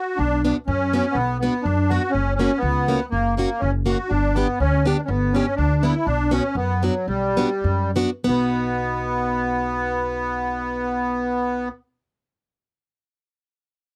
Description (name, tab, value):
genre	alpine folk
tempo	89-124 BPM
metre	2/4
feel	straight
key	B harmonic minor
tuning	A4 = 440 Hz
part	musette accordion	melody	0.0-11.7 s	F#3 to F#4	-25 LUFS	equal	none
part	upright bass	bass	0.2-11.7 s	F#1 to F#2	-26 LUFS	equal	none
part	picked plugged-in steel-string acoustic guitar	accompaniment	0.4-11.7 s	A#3 to G4	-26 LUFS	equal	none
room	little or no reverb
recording	dry, close 1970s-style studio recording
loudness	-22 LUFS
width	mono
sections	0.2-8.3 A section; 8.3-10.9 B section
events	stop 0.0; slowing down 6.1-8.3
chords	0.2 Bm; 2.1 F#; 4.1 G; 6.1 Bm; 8.3 B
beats	| 0.20 0.69 | 1.17 1.66 | 2.14 2.63 | 3.12 3.61 | 4.10 4.59 | 5.08 5.57 | 6.06 6.55 | 7.06 7.63 | 8.26 8.93 | 9.60 10.27